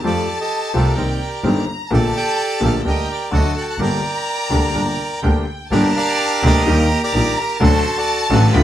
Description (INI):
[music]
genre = tango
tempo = 128 BPM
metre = 4/4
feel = rubato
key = G minor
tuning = A4 = 441 Hz
[part]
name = warm studio violin section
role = second line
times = 0.0-8.6 s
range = G5 to B5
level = -25 LUFS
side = left 2 dB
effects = none
[part]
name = warm upright piano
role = accompaniment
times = 0.0-8.6 s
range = G1 to G4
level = -21 LUFS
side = left 2 dB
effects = none
[part]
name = bandoneon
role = stabs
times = 0.0-8.6 s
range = A3 to Bb4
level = -28 LUFS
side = right 3 dB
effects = none
[part]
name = clear double bass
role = bass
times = 0.0-8.6 s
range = G1 to F2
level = -18 LUFS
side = equal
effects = none
[part]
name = bandoneon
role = melody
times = 0.1-8.6 s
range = D4 to G5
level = -21 LUFS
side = right 2 dB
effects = none
[sound]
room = moderate studio reverb, RT60 0.5 s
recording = band playing live in one room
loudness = -15 LUFS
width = side -12 dB against mid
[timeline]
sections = 0.0-5.7 A section; 5.7-8.6 B section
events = none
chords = 0.0 Fadd9; 1.0 Cm7; 1.9 Gmadd9/Bb; 2.8 Gm/D; 3.3 D; 3.8 Gm; 6.7 Eb; 7.6 D